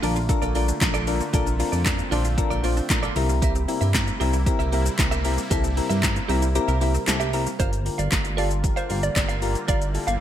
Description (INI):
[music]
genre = dance-pop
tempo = 115 BPM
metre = 4/4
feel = straight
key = G dorian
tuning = A4 = 440 Hz
[part]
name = soft electric-piano-like synth keys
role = accompaniment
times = 0.0-10.1 s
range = C4 to C5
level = -28 LUFS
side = left 7 dB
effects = chorus, sidechain pumping
[part]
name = sweeping resonant pad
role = sustained chords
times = 0.0-10.2 s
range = C3 to F4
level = -34 LUFS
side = right 2 dB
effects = chorus, sidechain pumping
[part]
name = hollow square pluck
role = arpeggios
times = 0.0-7.6 s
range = Bb3 to Bb4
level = -35 LUFS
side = right 8 dB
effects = chorus, sidechain pumping, ping-pong delay
[part]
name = direct-recorded clean electric guitar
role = riff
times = 0.0-10.2 s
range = F4 to F5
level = -32 LUFS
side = right 8 dB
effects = wide subtle chorus
[part]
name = chorused synth bass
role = bass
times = 0.0-10.2 s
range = G1 to G2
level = -24 LUFS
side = equal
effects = sidechain pumping
[part]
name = deep house drum kit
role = drums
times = 0.0-10.2 s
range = handclaps, hi-hat, kick drum, shaker, snare drum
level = -25 LUFS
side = equal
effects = overdrive, gated reverb
[part]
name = hollow square pluck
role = melody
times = 7.6-10.2 s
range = C5 to F5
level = -30 LUFS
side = right 1 dB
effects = chorus, ping-pong delay
[sound]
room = light reverb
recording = bright 1980s-style digital production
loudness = -20 LUFS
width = side -10 dB against mid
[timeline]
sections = 0.0-7.6 A section; 7.6-10.2 B section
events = kick muted 6.6-7.6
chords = 0.0 Bbmaj7; 3.2 C7; 7.6 Gm7